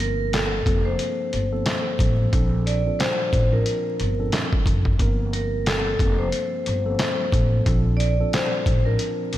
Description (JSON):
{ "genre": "hip hop, boom-bap hip-hop", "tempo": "90 BPM", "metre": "4/4", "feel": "swing 58% on 16ths", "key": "G minor", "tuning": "A4 = 440 Hz", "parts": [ { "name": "vibraphone with medium mallets", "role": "melody", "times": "0.0-9.4 s", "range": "A4 to D5", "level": "-26 LUFS", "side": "left 1 dB", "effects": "high-pass filter, low-pass filter, ping-pong delay" }, { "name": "mellow tine electric piano", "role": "accompaniment", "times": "0.0-9.4 s", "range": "G2 to Bb4", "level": "-29 LUFS", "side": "right 1 dB", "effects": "medium stereo tremolo, cassette tape, high-pass filter, low-pass filter" }, { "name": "upright bass", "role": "bass", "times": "0.0-9.4 s", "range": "F1 to Bb1", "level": "-23 LUFS", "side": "equal", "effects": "none" }, { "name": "trip hop sampler-style drum kit", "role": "drums", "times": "0.0-9.4 s", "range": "handclaps, hi-hat, kick drum, snare drum", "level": "-23 LUFS", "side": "equal", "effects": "none" } ], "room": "light reverb", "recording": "vinyl crackle", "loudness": "-19 LUFS", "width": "side -14 dB against mid", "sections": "0.0-9.4 A section", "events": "none", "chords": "0.0 Gm11; 2.3 Bbmaj7; 5.0 Gm11; 7.7 Bbmaj7" }